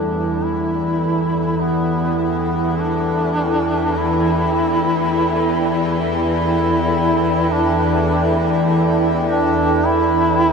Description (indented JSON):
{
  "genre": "dark ambient drone",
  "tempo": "free time",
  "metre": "none",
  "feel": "none",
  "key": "E minor",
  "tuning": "A4 = 440 Hz",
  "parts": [
    { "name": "warm duduk", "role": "melody", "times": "0.0-10.5 s", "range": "B3 to E4", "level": "-20 LUFS", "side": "left 1 dB", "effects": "diffuse ambient delay" },
    { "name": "deep dark ambient pad", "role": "sustained chords", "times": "0.0-10.5 s", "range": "E4 to G5", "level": "-21 LUFS", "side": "right 2 dB", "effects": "chorus, built-in reverb" },
    { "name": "warm concert grand piano", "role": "arpeggios", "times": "0.0-10.5 s", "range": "G2 to A3", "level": "-37 LUFS", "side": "left 2 dB", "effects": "none" },
    { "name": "bowed-like drone", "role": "drone", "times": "0.0-10.5 s", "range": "E2 to E3", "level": "-20 LUFS", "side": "equal", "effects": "built-in reverb" },
    { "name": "metallic inharmonic drone", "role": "texture", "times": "0.0-10.5 s", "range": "E3 to E4", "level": "-28 LUFS", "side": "left 1 dB", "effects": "chorus, built-in reverb" }
  ],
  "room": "wet huge ambient reverb, RT60 7.6 s",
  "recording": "none",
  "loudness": "-15 LUFS",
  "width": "side -5 dB against mid",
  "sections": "0.0-10.5 A section",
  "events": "fade-in on synth drone 0.0-10.5; fade-in on duduk 0.0-10.5",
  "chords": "0.0 Em",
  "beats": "free time"
}